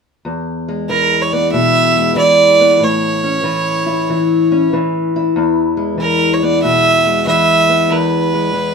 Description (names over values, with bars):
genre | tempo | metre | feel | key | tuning
acoustic country blues, solo or duo | 94 BPM | 4/4 | swing 66% on 8ths | E major | A4 = 437 Hz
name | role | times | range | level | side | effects
fingerpicked steel-string acoustic guitar | accompaniment | 0.2-8.7 s | E2 to E4 | -15 LUFS | left 3 dB | none
clear fiddle | melody | 0.9-8.7 s | A#4 to E5 | -13 LUFS | right 4 dB | none
room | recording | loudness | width
moderate studio reverb, RT60 0.7 s | minimal, uncompressed stereo recording | -11 LUFS | side -5 dB against mid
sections
0.3-8.7 A section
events
none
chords
0.3 E; 2.8 A; 5.4 E